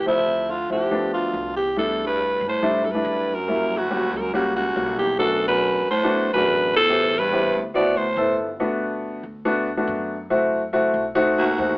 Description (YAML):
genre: jazz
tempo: 141 BPM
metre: 4/4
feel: straight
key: G major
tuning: A4 = 439 Hz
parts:
  - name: growling alto saxophone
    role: melody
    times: 0.0-8.4, 11.4-11.8 s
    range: E4 to D5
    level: -21 LUFS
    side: equal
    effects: none
  - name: warm baritone saxophone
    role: second line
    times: 0.0-8.4, 11.4-11.8 s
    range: C#2 to D3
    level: -28 LUFS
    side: right 1 dB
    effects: none
  - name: upright bass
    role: bass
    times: 0.0-11.8 s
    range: G1 to G2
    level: -39 LUFS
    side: equal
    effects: none
  - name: warm baby grand piano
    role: accompaniment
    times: 0.1-11.8 s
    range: F3 to A4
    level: -22 LUFS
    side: left 1 dB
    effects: none
room: moderate studio reverb, RT60 0.6 s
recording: band playing live in one room, AM radio sound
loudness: -19 LUFS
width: side -22 dB against mid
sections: 0.0-1.8 A section; 1.8-11.8 B section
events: none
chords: 0.1 Dm7; 0.9 G7; 1.8 C69; 3.5 F#7b9; 5.2 Bm7; 6.9 Am9; 7.7 D13; 8.6 Gmaj9; 10.3 F#m7b5; 11.2 B7b9